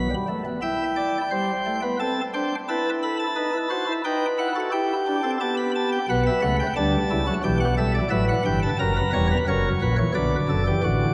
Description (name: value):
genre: classical, baroque-style 4-part fugue for pipe organ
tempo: 88 BPM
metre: 4/4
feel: straight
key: E minor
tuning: A4 = 439 Hz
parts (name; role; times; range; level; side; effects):
- chamber organ, sparkling flutes; solo; 0.0-11.1 s; E1 to B5; -24 LUFS; equal; none
room: wet church reverb, RT60 3.4 s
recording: none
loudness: -24 LUFS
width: mono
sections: 0.6-11.1 A section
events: none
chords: 0.0 B5; 0.6 Em; 2.0 Am/C; 3.4 B7/D#; 4.7 Em; 6.1 Bm; 7.4 Em/B; 8.8 F#7; 10.1 Bm